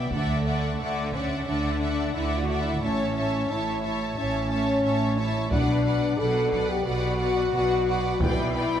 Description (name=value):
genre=cinematic, epic orchestral film score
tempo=89 BPM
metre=4/4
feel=straight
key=B minor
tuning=A4 = 440 Hz
part: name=clear symphonic violin section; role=melody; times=0.0-8.8 s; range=F#5 to A5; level=-34 LUFS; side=equal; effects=none
part: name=clear studio violin section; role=second line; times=0.0-8.8 s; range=D5 to E5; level=-35 LUFS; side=equal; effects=none
part: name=clear symphonic viola section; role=accompaniment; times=0.0-8.8 s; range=B4 to D5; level=-34 LUFS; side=equal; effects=none
part: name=warm French horn section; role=sustained chords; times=0.0-8.8 s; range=A3 to A4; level=-26 LUFS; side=left 3 dB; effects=none
part: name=clear symphonic cello section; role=bass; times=0.0-8.8 s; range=A2 to D3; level=-30 LUFS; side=right 2 dB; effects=none
part: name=rich studio double bass section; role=bass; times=0.0-8.8 s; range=A1 to D2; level=-30 LUFS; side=right 3 dB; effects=none
part: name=taiko ensemble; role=drums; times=0.1-1.4, 5.5-8.8 s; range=none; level=-30 LUFS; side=equal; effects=none
room=moderate scoring stage reverb, RT60 1.5 s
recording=none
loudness=-23 LUFS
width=side -9 dB against mid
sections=0.0-8.8 A section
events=none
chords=0.1 Dadd9; 2.8 A; 5.5 Bm; 8.2 G6/B